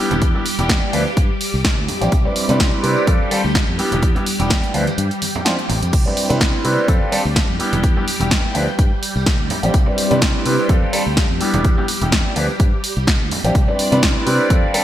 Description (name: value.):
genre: filtered disco house.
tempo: 126 BPM.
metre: 4/4.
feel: swing 55% on 16ths.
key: C major.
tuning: A4 = 439 Hz.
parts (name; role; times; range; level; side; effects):
warm grand piano; accompaniment; 0.0-14.8 s; F3 to C5; -20 LUFS; equal; phaser, sidechain pumping, low-pass filter.
phased string machine; sustained chords; 0.0-14.8 s; G3 to D5; -25 LUFS; equal; ensemble chorus, phaser, vintage 12-bit sampler grit, sidechain pumping, low-pass filter.
fingered electric bass; bass; 0.1-14.6 s; E1 to C3; -22 LUFS; equal; sidechain pumping, low-pass filter.
punchy analog drum machine; drums; 0.1-14.8 s; crash cymbal, hi-hat, snare drum; -22 LUFS; equal; sidechain pumping on hats, sidechain pumping on cymbals, gated reverb.
congas and tambourine; percussion; 0.1-14.7 s; none; -30 LUFS; right 3 dB; sidechain pumping on perc, low-pass filter on perc.
electronic kick drum; drums; 0.2-14.6 s; none; -17 LUFS; equal; none.
room: light reverb.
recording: bright 1980s-style digital production.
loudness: -15 LUFS.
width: side -12 dB against mid.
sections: 0.0-14.8 A section.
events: kick drops out 5.0-5.9.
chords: 0.0 Em7; 0.9 D7(no3); 2.1 Cmaj7; 3.1 F6; 3.8 Em7; 4.7 Dm7; 5.9 Cmaj7; 6.9 F6; 7.6 Em7; 8.6 D7(no3); 9.7 Cmaj7; 10.7 F6; 11.4 Em7; 12.4 D7(no3); 13.6 Cmaj7.